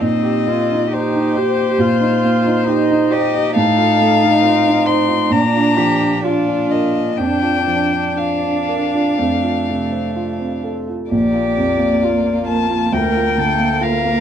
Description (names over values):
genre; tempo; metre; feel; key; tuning
classical, slow romantic movement for piano quartet; 60-70 BPM; 4/4; rubato; Bb major; A4 = 437 Hz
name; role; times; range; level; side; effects
dark violin; melody; 0.0-14.2 s; C5 to C6; -19 LUFS; left 8 dB; none
warm cello; second line; 0.0-14.2 s; C4 to Bb4; -22 LUFS; right 5 dB; none
warm baby grand piano; accompaniment; 0.0-14.2 s; Bb1 to C5; -18 LUFS; right 1 dB; none
warm viola; accompaniment; 0.0-14.2 s; A3 to G4; -21 LUFS; right 2 dB; none
room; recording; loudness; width
light reverb; dark, warm production; -14 LUFS; side -9 dB against mid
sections
0.0-14.2 A section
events
none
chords
0.0 Cm7/Bb; 3.6 F7/A; 5.3 Bb; 7.2 Bb/F; 9.2 F; 11.1 Bb; 12.9 Bb/D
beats
| 0.03 0.93 1.81 2.69 | 3.57 4.45 5.33 6.25 | 7.20 8.19 9.19 10.16 | 11.12 12.03 12.93 13.83